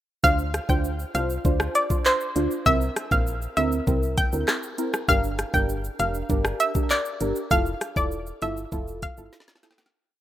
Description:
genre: dancehall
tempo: 99 BPM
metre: 4/4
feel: straight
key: D minor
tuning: A4 = 437 Hz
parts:
  - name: analog pluck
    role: melody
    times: 0.2-9.2 s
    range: C5 to G5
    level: -25 LUFS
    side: equal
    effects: chorus
  - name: deep mellow chord stab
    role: accompaniment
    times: 0.2-9.8 s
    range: C4 to C5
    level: -29 LUFS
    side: right 2 dB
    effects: chorus
  - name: solid FM bass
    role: bass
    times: 0.2-9.3 s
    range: E1 to D2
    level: -29 LUFS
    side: equal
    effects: none
  - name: island pop drum kit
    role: drums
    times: 0.2-10.0 s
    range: handclaps, hi-hat, kick drum, rim click, shaker, snare drum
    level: -26 LUFS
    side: equal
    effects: none
room: light reverb, digital ambience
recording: rough home demo mix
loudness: -22 LUFS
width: side -13 dB against mid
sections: 0.2-9.9 chorus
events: fade-out 7.5-9.9; drum fill 9.3-9.9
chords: 0.2 Dm7; 2.7 C7; 5.1 Gm; 7.5 Fmaj7

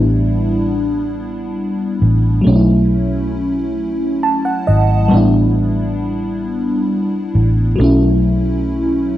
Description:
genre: R&B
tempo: 45 BPM (dotted quarters)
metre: 6/8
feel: straight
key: unclear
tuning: A4 = 440 Hz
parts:
  - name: FM electric piano with soft pad layer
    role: accompaniment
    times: 0.0-9.2 s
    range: F#3 to A5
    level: -16 LUFS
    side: equal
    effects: chorus, phaser, cassette tape
  - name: vintage muted fingered electric bass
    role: bass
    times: 0.0-9.2 s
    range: G#1 to B1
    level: -16 LUFS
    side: equal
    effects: none
room: moderate lush hall reverb, RT60 2.3 s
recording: home recording on cassette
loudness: -13 LUFS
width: side -13 dB against mid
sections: 0.0-9.2 A section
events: FM electric piano fill 3.8-5.1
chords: 0.0 A9sus4; 2.4 B9sus4; 5.1 A9sus4; 7.8 B9sus4

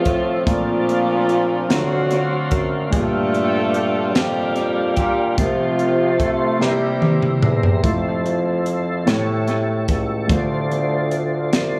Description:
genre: slow gospel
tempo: 49 BPM (dotted quarters)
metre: 6/8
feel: straight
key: F major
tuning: A4 = 440 Hz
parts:
  - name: breathy tenor saxophone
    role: melody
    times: 0.0-7.5 s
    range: F3 to A3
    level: -26 LUFS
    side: equal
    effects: tape echo
  - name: dark saxophone section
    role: melody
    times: 0.0-7.8 s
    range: A3 to A4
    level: -28 LUFS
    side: equal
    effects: tape echo
  - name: warm grand piano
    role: accompaniment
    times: 0.0-11.8 s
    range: G2 to Bb5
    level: -26 LUFS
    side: equal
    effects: tape echo
  - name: percussive tonewheel organ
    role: sustained chords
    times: 0.0-11.8 s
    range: F3 to C#6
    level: -28 LUFS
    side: equal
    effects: slow rotary speaker, chorus vibrato
  - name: mellow bassoon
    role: bass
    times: 0.1-11.8 s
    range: C2 to C3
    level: -25 LUFS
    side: equal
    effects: none
  - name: crisp fusion drum kit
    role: drums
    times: 0.1-11.7 s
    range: hi-hat, kick drum, snare drum, toms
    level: -23 LUFS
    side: equal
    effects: tape echo
room: light reverb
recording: echo-heavy mix, studio reverb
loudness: -19 LUFS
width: mono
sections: 0.0-11.8 A section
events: drum fill 6.6-7.8; grand piano fill 11.5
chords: 0.5 Bbmaj7; 1.7 D7b13; 2.9 Gm7; 5.4 F/C; 6.6 C7; 7.8 Fmaj7; 9.1 A7; 10.3 Dm7

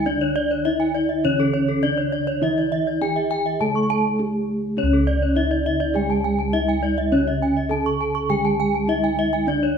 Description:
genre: Balinese gamelan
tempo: 102 BPM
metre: 4/4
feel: straight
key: C# pelog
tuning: A4 = 441 Hz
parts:
  - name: gamelan-type bronze metallophone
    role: melody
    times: 0.0-9.8 s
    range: C#4 to A4-40c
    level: -24 LUFS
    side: left 1 dB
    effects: none
  - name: gamelan-type bronze metallophone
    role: accompaniment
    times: 0.0-9.8 s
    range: C#3 to A3-40c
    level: -27 LUFS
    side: right 3 dB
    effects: none
  - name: gamelan-type bronze metallophone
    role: arpeggios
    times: 0.0-9.5 s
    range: C#5 to C#6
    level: -28 LUFS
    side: right 7 dB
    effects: none
  - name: gamelan-type bossed gongs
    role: bass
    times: 0.0-9.8 s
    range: C#2 to E4-50c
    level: -26 LUFS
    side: equal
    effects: none
  - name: gamelan-type bronze metallophone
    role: arpeggios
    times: 0.1-9.8 s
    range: A4-40c to C#6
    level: -25 LUFS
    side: left 5 dB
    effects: none
room: moderate scoring stage reverb, RT60 1.6 s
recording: minimal, uncompressed stereo recording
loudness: -19 LUFS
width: side -7 dB against mid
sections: 0.0-9.8 A section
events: none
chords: none

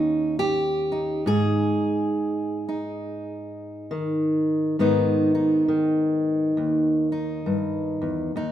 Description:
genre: folk, solo fingerstyle acoustic guitar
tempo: 68 BPM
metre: 4/4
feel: swing 62% on 8ths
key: G# harmonic minor from 4.8 s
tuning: A4 = 440 Hz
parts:
  - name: fingerpicked steel-string acoustic guitar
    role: solo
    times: 0.0-8.5 s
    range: D#2 to G#4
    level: -21 LUFS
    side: equal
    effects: none
room: light reverb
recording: minimal, uncompressed stereo recording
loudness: -21 LUFS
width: side -11 dB against mid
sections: 0.0-4.8 A section; 4.8-8.5 B section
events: none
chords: 0.0 D#7; 1.3 G#5; 4.8 G#m

